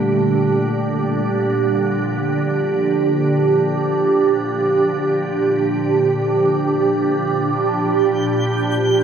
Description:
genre	ambient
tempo	free time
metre	none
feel	none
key	G minor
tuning	A4 = 440 Hz
part	soft additive organ-like pad	sustained chords	0.0-9.0 s	Bb2 to G4	-16 LUFS	right 2 dB	ensemble chorus, built-in reverb
part	muted felt-like synth keys	arpeggios	0.0-9.0 s	A3 to A5	-30 LUFS	left 5 dB	none
part	hand-pumped harmonium	drone	7.4-9.0 s	G3 to D4	-30 LUFS	left 1 dB	none
part	twinkling granular texture	texture	8.0-9.0 s	G6	-29 LUFS	equal	built-in reverb
room	moderate spring reverb, RT60 2.9 s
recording	echo-heavy mix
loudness	-16 LUFS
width	side -7 dB against mid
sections	0.0-7.4 A section; 7.4-9.0 B section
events	none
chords	0.0 Gm9

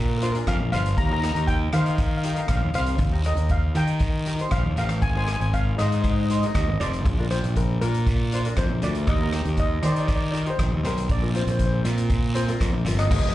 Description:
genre	calypso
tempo	119 BPM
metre	4/4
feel	straight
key	Eb major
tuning	A4 = 440 Hz
part	steel pan	melody	0.0-13.3 s	Bb4 to Bb5	-30 LUFS	left 1 dB	plate reverb, slapback echo
part	tenor ukulele	accompaniment	0.0-13.1 s	C4 to C5	-33 LUFS	left 2 dB	plate reverb, slapback echo
part	fuzz fingered electric bass	bass	0.0-13.3 s	F1 to Eb3	-23 LUFS	equal	overdrive
part	street-band drum kit	drums	0.2-13.2 s	crash cymbal, hi-hat, kick drum, rim click	-26 LUFS	equal	none
part	guiro	percussion	0.5-13.3 s	none	-40 LUFS	right 2 dB	none
room	little or no reverb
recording	live gig heard through the venue's PA, club reverb, nothing above 10.9 kHz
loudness	-21 LUFS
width	side -15 dB against mid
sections	0.0-13.1 A section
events	none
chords	0.0 Bb; 1.0 Ebadd9; 5.0 Ab; 7.1 Bb; 9.1 Eb; 11.1 Bbsus2

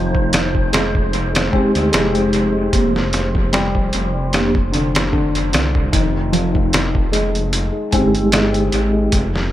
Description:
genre	trip hop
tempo	75 BPM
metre	4/4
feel	swing 55% on 16ths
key	F dorian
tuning	A4 = 445 Hz
part	felt-muted upright piano	arpeggios	0.0-9.2 s	D3 to C4	-22 LUFS	left 1 dB	vintage 12-bit sampler grit, tape echo
part	dark detuned saw bass	bass	0.0-9.5 s	F1 to D2	-21 LUFS	equal	none
part	wind-like tuned noise texture	texture	0.0-5.9 s	C5	-28 LUFS	right 2 dB	built-in reverb
part	trip hop sampler-style drum kit	drums	0.1-9.5 s	hi-hat, kick drum, snare drum	-19 LUFS	equal	dub echo
part	vibraphone with soft mallets	accompaniment	1.5-9.1 s	Ab3 to G4	-18 LUFS	equal	tremolo, tape echo
room	light reverb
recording	echo-heavy mix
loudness	-14 LUFS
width	side -13 dB against mid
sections	0.0-5.9 A section; 5.9-9.5 B section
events	none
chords	0.0 Fm7; 2.7 Fsus2; 4.3 N.C.; 5.9 Fm7

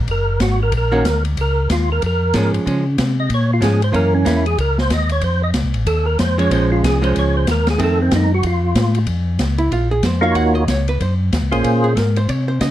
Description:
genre	soul jazz organ trio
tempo	187 BPM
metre	4/4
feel	swing 61% on 8ths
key	Bb minor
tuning	A4 = 440 Hz
part	mellow tonewheel organ	bass	0.0-12.7 s	Gb1 to Db3	-18 LUFS	equal	chorus vibrato, slow rotary speaker
part	percussive tonewheel organ	melody	0.1-11.9 s	Bb3 to Eb5	-19 LUFS	right 1 dB	slow rotary speaker, chorus vibrato
part	open jazz drum kit	drums	0.1-12.7 s	hi-hat, kick drum, ride cymbal, snare drum	-23 LUFS	left 1 dB	none
part	archtop guitar, miked and amplified	accompaniment	0.9-12.7 s	Eb3 to Gb5	-20 LUFS	right 2 dB	none
room	light reverb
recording	dark, warm production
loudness	-14 LUFS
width	side -13 dB against mid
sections	0.0-9.1 A section; 9.1-12.7 A section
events	tonewheel organ solo 0.0-9.1; hollow-body jazz guitar solo 9.1-12.7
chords	0.0 Ebm (rootless); 1.4 Bbm7; 3.9 Gb7; 5.2 F7; 6.5 Bbm7; 7.8 F7; 9.1 Bbm; 10.4 Ebm7; 11.6 Bbm7

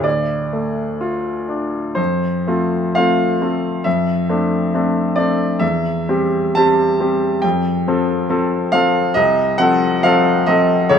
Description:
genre	classical, romantic character piece for solo piano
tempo	59-71 BPM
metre	2/4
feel	rubato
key	F major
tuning	A4 = 445 Hz
part	bright baby grand piano	solo	0.0-11.0 s	C2 to A5	-15 LUFS	equal	none
room	moderate concert hall reverb, RT60 2.4 s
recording	close, detailed microphones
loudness	-15 LUFS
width	side -7 dB against mid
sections	0.0-2.0 A section; 2.0-11.0 B section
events	none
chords	0.0 Dm; 2.0 F; 3.9 Dm7/F; 5.6 C/E; 7.4 F; 9.2 F/C

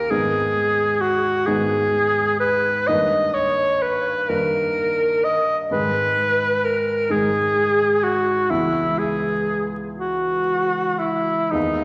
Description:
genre	classical, romantic duo for alto saxophone and grand piano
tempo	38-44 BPM (dotted quarters)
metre	12/8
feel	rubato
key	G# minor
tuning	A4 = 440 Hz
part	bright alto saxophone	melody	0.0-11.8 s	D#4 to D#5	-21 LUFS	equal	none
part	warm concert grand piano	accompaniment	0.0-11.8 s	C#2 to D#4	-29 LUFS	equal	none
room	wet scoring stage reverb, RT60 1.6 s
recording	vinyl crackle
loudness	-20 LUFS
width	mono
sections	0.0-11.8 A section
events	none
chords	0.1 G#m; 2.9 D#/G; 5.7 G#m; 8.5 C#m7

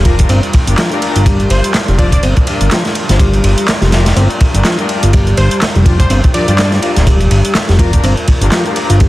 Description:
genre	breakbeat, breaks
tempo	124 BPM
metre	4/4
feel	swing 57% on 16ths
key	G minor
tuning	A4 = 440 Hz
part	deep dark ambient pad	sustained chords	0.0-9.1 s	G3 to C5	-23 LUFS	right 1 dB	chorus, built-in reverb, sidechain pumping
part	mellow tonewheel organ	riff	0.0-9.1 s	F3 to F4	-19 LUFS	equal	overdrive, fast rotary speaker, digital delay
part	fat analog bass	bass	0.0-9.1 s	D1 to G2	-11 LUFS	equal	tube saturation
part	muted studio string section	stabs	0.1-8.9 s	D4 to C5	-21 LUFS	left 4 dB	digital delay
part	crunchy breakbeat drum kit	drums	0.1-9.1 s	kick drum, ride cymbal, snare drum	-13 LUFS	equal	none
part	punchy analog drum machine	drums	0.1-9.1 s	handclaps, hi-hat, ride cymbal	-21 LUFS	right 1 dB	none
part	plucky unison lead	melody	1.5-2.2, 5.4-7.0 s	C5 to D5	-21 LUFS	equal	small speaker sound, digital delay
room	small room ambience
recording	dense, heavily limited modern master, vinyl crackle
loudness	-9 LUFS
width	side -17 dB against mid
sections	0.0-9.1 A section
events	none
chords	0.0 Gm7

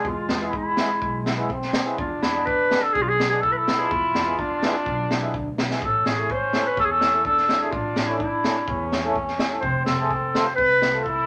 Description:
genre	klezmer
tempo	126 BPM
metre	4/4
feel	straight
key	unclear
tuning	A4 = 441 Hz
part	clear clarinet	melody	0.0-11.3 s	E4 to C5	-24 LUFS	equal	none
part	trombone with metal mute	second line	0.0-11.3 s	G#3 to E4	-30 LUFS	equal	none
part	mellow accordion	accompaniment	0.0-11.1 s	G#3 to G#4	-31 LUFS	equal	none
part	dark double bass	bass	0.0-11.2 s	F1 to E2	-35 LUFS	equal	none
part	crunchy breakbeat drum kit	drums	0.0-11.2 s	kick drum, snare drum	-30 LUFS	equal	none
room	wet studio ambience, RT60 0.5 s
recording	none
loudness	-22 LUFS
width	mono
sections	0.0-11.3 A section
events	none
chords	0.0 E; 5.8 A; 9.6 F

